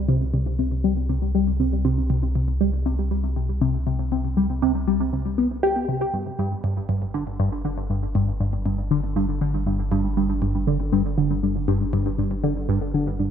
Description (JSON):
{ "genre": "ambient, sequencer-driven space music", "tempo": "119 BPM", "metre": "4/4", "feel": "straight", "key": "unclear", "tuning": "A4 = 440 Hz", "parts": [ { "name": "warm sub bass", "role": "bass", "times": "0.0-13.3 s", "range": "G1 to C2", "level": "-26 LUFS", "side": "equal", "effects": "none" }, { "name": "tight sequenced synth", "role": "riff", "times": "0.1-13.3 s", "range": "G2 to G4", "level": "-22 LUFS", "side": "equal", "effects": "chorus, analog delay" } ], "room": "moderate spring reverb, RT60 2.6 s", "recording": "echo-heavy mix", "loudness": "-21 LUFS", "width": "side -8 dB against mid", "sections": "0.0-13.3 A section", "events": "filter sweep on synth arpeggio sound 0.0-13.3", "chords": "0.0 C5; 6.1 G5" }